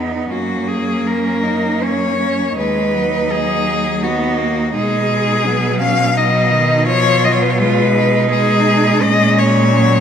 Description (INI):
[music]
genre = classical, lyrical piece for cello ensemble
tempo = 78-85 BPM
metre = 3/4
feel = rubato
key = B major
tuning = A4 = 440 Hz
[part]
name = rich cello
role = second line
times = 0.0-10.0 s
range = B3 to E#4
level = -20 LUFS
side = right 6 dB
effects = none
[part]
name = rich cello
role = accompaniment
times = 0.0-10.0 s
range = D#3 to B3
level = -19 LUFS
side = equal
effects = none
[part]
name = rich cello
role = bass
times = 0.0-10.0 s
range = D#2 to B2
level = -19 LUFS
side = right 2 dB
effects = none
[part]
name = clear cello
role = melody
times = 0.3-10.0 s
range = F#4 to E#5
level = -17 LUFS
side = left 5 dB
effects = none
[sound]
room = moderate concert hall reverb, RT60 2.2 s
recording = none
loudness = -13 LUFS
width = side -8 dB against mid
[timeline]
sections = 0.0-10.0 A section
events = none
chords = 0.3 F#; 2.6 B/D#; 4.7 G#m7/B; 6.9 B69; 9.0 F#/A#